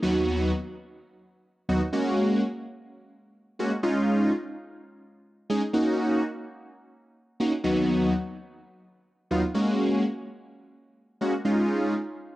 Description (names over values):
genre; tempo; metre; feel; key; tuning
pop; 126 BPM; 4/4; straight; unclear; A4 = 440 Hz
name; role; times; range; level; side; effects
big bright polysynth; solo; 0.0-11.9 s; D#2 to Ab4; -24 LUFS; equal; chorus, cassette tape, analog delay
room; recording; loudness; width
moderate spring reverb, RT60 2.4 s; home recording on cassette; -23 LUFS; side -16 dB against mid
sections
0.0-12.4 A section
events
none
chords
0.0 B/D#; 1.9 Gbadd9; 3.8 Dbadd9; 5.7 Ebm7; 7.6 B/D#; 9.5 Gbadd9; 11.5 Dbadd9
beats
| 0.02 0.50 0.98 1.45 | 1.93 2.40 2.88 3.36 | 3.83 4.31 4.79 5.26 | 5.74 6.21 6.69 7.17 | 7.64 8.12 8.60 9.07 | 9.55 10.02 10.50 10.98 | 11.45 11.93